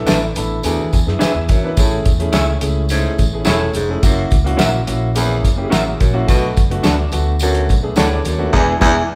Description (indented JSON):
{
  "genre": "uptempo 1960s-style soul",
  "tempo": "106 BPM",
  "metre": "4/4",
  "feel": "straight",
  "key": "A major",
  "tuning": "A4 = 440 Hz",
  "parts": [
    { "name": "clear concert grand piano", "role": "accompaniment", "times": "0.0-9.0 s", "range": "G#3 to B5", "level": "-24 LUFS", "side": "equal", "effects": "none" },
    { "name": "electric guitar through a small old amp", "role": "stabs", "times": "0.1-9.0 s", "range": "B3 to E5", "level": "-22 LUFS", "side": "equal", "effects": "vibrato effect" },
    { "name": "fingered electric bass", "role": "bass", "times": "0.1-9.0 s", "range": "E1 to E3", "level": "-22 LUFS", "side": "equal", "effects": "none" },
    { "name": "cloth-damped thuddy drum kit", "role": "drums", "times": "0.1-9.0 s", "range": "crash cymbal, hi-hat, kick drum, snare drum", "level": "-19 LUFS", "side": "equal", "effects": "none" },
    { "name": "tambourine", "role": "percussion", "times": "0.1-8.4 s", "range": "none", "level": "-32 LUFS", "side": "equal", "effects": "none" },
    { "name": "bright baritone saxophone", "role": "riff", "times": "0.6-9.0 s", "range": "D2 to B2", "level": "-23 LUFS", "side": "equal", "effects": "none" }
  ],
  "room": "moderate large studio reverb, RT60 1.1 s",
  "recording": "band playing live in one room",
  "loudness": "-16 LUFS",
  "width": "mono",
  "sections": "0.0-9.2 A section",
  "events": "grand piano fill 0.1-1.8; band accent 8.5-9.2",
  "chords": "0.0 E7sus4; 0.6 E7; 1.8 Amaj7; 4.0 F#7; 6.3 Bm7; 8.5 E7"
}